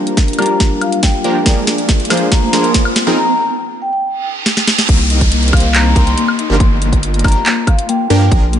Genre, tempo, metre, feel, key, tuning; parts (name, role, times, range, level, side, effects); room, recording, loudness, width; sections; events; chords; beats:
future bass; 140 BPM; 4/4; half-time; C minor; A4 = 439 Hz
dark concert grand piano; accompaniment; 0.0-3.2 s; G3 to D5; -20 LUFS; left 3 dB; sidechain pumping, digital delay
airy breathy pad; sustained chords; 0.0-3.2 s; G3 to Bb4; -26 LUFS; right 1 dB
supersaw stab; riff; 0.0-8.6 s; Eb3 to C5; -19 LUFS; right 1 dB; cassette tape, sidechain pumping, low-pass filter
riser, reverse cymbal and downlifter; sound effects; 0.1-8.3 s; -22 LUFS; right 3 dB
trap drum kit; drums; 0.1-8.6 s; crash cymbal, handclaps, hi-hat, snare drum, woodblock; -17 LUFS; equal
electronic kick drum; drums; 0.2-8.4 s; -13 LUFS; equal
vibraphone with soft mallets; melody; 0.4-8.4 s; F5 to C6; -20 LUFS; left 1 dB; sidechain pumping, digital delay
Celtic harp; arpeggios; 4.9-8.6 s; Bb3 to F4; -20 LUFS; left 7 dB; sidechain pumping, digital delay
saturated sub bass; bass; 4.9-8.6 s; G1 to G2; -14 LUFS; equal; sidechain pumping
light reverb, digital ambience; nothing above 10.8 kHz; -11 LUFS; side -9 dB against mid
0.0-4.9 A section; 4.9-8.6 B section
build-up 0.0-4.9; drum fill 0.0-3.2, 4.5-4.9; break 3.2-4.9; reverse cymbal 4.2-4.9; drop 4.9-8.6
0.0 Gm7; 1.5 Bb7; 3.2 N.C.; 4.9 Cm7; 6.6 Gm7
0.17 0.60 1.03 | 1.46 1.89 2.32 2.75 | 3.17 3.60 4.03 4.46 | 4.89 5.32 5.75 6.17 | 6.60 7.03 7.46 7.89 | 8.32